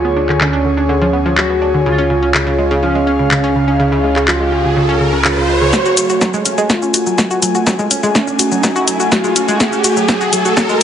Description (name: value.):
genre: melodic techno.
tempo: 124 BPM.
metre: 4/4.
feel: straight.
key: F# harmonic minor.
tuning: A4 = 443 Hz.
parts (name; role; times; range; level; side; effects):
resonant sweep polysynth; melody; 0.0-10.8 s; C#4 to G#4; -18 LUFS; right 2 dB; chorus, sidechain pumping, digital delay.
analog pluck; arpeggios; 0.0-10.8 s; C#3 to F#4; -18 LUFS; equal; chorus, vintage 12-bit sampler grit, sidechain pumping, tape echo.
dark detuned saw bass; bass; 0.0-5.7 s; C#2 to D2; -20 LUFS; left 1 dB; sidechain pumping.
airy breathy pad; texture; 0.0-10.8 s; A3 to G#5; -19 LUFS; left 1 dB; chorus, sidechain pumping.
house drum kit; drums; 0.3-10.8 s; handclaps, hi-hat, shaker, snare drum; -17 LUFS; left 1 dB; low-pass filter on snare, sidechain pumping on perc, low-pass filter on perc, sidechain pumping on hats, low-pass filter on hats.
riser; sound effects; 3.6-10.8 s; none; -20 LUFS; right 1 dB; none.
electronic kick drum; drums; 5.7-10.7 s; none; -21 LUFS; equal; high-pass filter on kick.
room: light reverb, digital ambience.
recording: heavily compressed radio sound, low-pass filter, nothing above 10.6 kHz.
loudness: -11 LUFS.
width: side -9 dB against mid.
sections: 0.0-5.7 A section; 5.7-10.8 B section.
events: riser 3.6-5.7, 5.7-10.8; build-up 5.7-10.8; drum fill 5.7-10.8; filter sweep on analog polysynth 5.7-10.8.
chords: 0.0 D; 1.9 C#; 5.7 F#madd9.